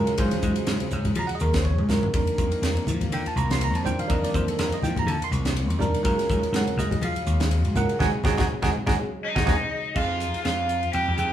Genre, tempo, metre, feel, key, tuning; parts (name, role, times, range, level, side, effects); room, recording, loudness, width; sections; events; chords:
electric jazz fusion; 123 BPM; 4/4; swing 56% on 16ths; A4 = 440 Hz
bell-like tine electric piano; accompaniment; 0.0-11.3 s; Gb3 to C6; -27 LUFS; right 2 dB; medium stereo tremolo
brassy analog pad; sustained chords; 0.0-11.3 s; Db3 to C5; -34 LUFS; left 2 dB; chorus
vintage slap bass; bass; 0.0-11.3 s; Ab1 to F3; -26 LUFS; equal
crisp fusion drum kit; drums; 0.1-11.3 s; crash cymbal, hi-hat, kick drum, ride cymbal, snare drum, toms; -29 LUFS; equal
congas; percussion; 0.3-9.6 s; -29 LUFS; left 1 dB
concert flute; melody; 9.2-11.3 s; Eb5 to G5; -28 LUFS; right 2 dB
crunchy overdriven guitar; second line; 9.2-11.3 s; Eb4 to G4; -29 LUFS; left 5 dB
moderate studio reverb, RT60 0.8 s; band playing live in one room, small room ambience; -22 LUFS; side -11 dB against mid
0.0-10.0 A section; 10.0-11.3 B section
drum fill 1.7-2.1, 9.0-10.0; band accent 8.0-10.0; tine electric piano fill 9.0-10.0
0.0 Ab13sus4; 2.1 F13sus4; 6.1 Ab13sus4; 10.0 Fm9